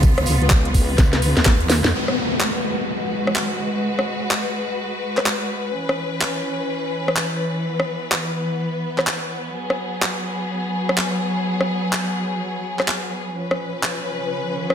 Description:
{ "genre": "bass house", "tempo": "126 BPM", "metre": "4/4", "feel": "swing 62% on 16ths", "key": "G# minor", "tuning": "A4 = 440 Hz", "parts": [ { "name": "clear symphonic string section", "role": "sustained chords", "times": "0.0-14.7 s", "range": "E3 to B4", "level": "-24 LUFS", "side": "left 1 dB", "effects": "sidechain pumping" }, { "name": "wobble bass", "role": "bass", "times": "0.0-1.9 s", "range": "C#2 to E#2", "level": "-20 LUFS", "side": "equal", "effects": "chorus, tube saturation, sidechain pumping" }, { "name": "electronic kick drum", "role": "drums", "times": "0.0-1.6 s", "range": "none", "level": "-16 LUFS", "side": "equal", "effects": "none" }, { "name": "garage drum kit", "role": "drums", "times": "0.0-14.7 s", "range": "handclaps, hi-hat, rim click, snare drum", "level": "-23 LUFS", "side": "equal", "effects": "none" }, { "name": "huge arena drum kit", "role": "drums", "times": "0.0-1.8 s", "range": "hi-hat, snare drum, tambourine", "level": "-32 LUFS", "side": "right 3 dB", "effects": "sidechain pumping on hats, high-pass filter on hats, high-pass filter on snare, sidechain pumping on perc, high-pass filter on perc, high-pass filter on room" }, { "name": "downlifter and riser", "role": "sound effects", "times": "1.9-5.7, 13.7-14.7 s", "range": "none", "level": "-26 LUFS", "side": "left 1 dB", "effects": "none" } ], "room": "moderate lush hall reverb, RT60 2.1 s", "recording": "none", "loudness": "-19 LUFS", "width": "side -8 dB against mid", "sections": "0.0-1.9 A section; 1.9-14.7 B section", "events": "drum fill 1.0-1.9; riser 13.7-14.7", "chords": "0.0 C#7; 1.9 G#m7; 5.7 C#m7; 9.6 G#m7; 13.4 C#7" }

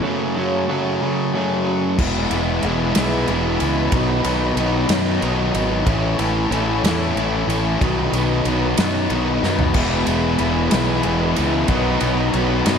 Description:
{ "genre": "quiet-loud alternative rock", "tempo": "62 BPM (dotted quarters)", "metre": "6/8", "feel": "straight", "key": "E major", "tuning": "A4 = 441 Hz", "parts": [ { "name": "twelve-string electric guitar", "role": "arpeggios", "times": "0.0-2.0 s", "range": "F#2 to C#4", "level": "-25 LUFS", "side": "right 3 dB", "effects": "ensemble chorus" }, { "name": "fuzz guitar", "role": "riff", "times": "0.0-12.8 s", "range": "F#2 to E4", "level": "-22 LUFS", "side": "left 9 dB", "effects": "distortion, slapback echo" }, { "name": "sludgy distorted guitar", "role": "riff", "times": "0.0-12.8 s", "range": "F#2 to E4", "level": "-23 LUFS", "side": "right 7 dB", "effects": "overdrive" }, { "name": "clear symphonic string section", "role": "sustained chords", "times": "2.0-12.8 s", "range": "E4 to B5", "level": "-29 LUFS", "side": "left 1 dB", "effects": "none" }, { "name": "fuzz fingered electric bass", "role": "bass", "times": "2.0-12.8 s", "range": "E1 to F#2", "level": "-23 LUFS", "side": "equal", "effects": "overdrive" }, { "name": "loose indie drum kit", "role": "drums", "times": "2.0-12.8 s", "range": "crash cymbal, kick drum, ride cymbal, snare drum, toms", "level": "-24 LUFS", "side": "equal", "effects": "none" }, { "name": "cranked stack guitar", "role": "riff", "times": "9.7-12.8 s", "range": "E2 to B3", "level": "-24 LUFS", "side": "equal", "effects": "overdrive" } ], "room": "moderate scoring stage reverb, RT60 1.6 s, studio ambience", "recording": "big arena sound", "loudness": "-17 LUFS", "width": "side -7 dB against mid", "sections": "0.0-2.0 A section; 2.0-12.8 B section", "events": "break 0.0-2.0; drum fill 9.4-9.8", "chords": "0.0 F#m; 2.0 E; 3.9 B; 5.9 A; 7.8 B; 9.8 E; 11.7 B" }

